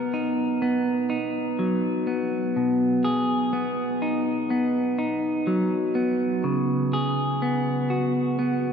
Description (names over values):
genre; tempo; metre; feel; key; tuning
rock; 62 BPM; 4/4; straight; unclear; A4 = 440 Hz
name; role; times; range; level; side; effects
clean electric guitar; solo; 0.0-8.7 s; B2 to A#4; -22 LUFS; equal; none
room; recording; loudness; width
wet cathedral reverb, RT60 6.0 s; recorded in a church or concert hall; -22 LUFS; side -7 dB against mid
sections
0.0-8.7 A section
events
none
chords
0.0 Bmaj7; 2.6 G#m7/B; 6.4 C#7sus4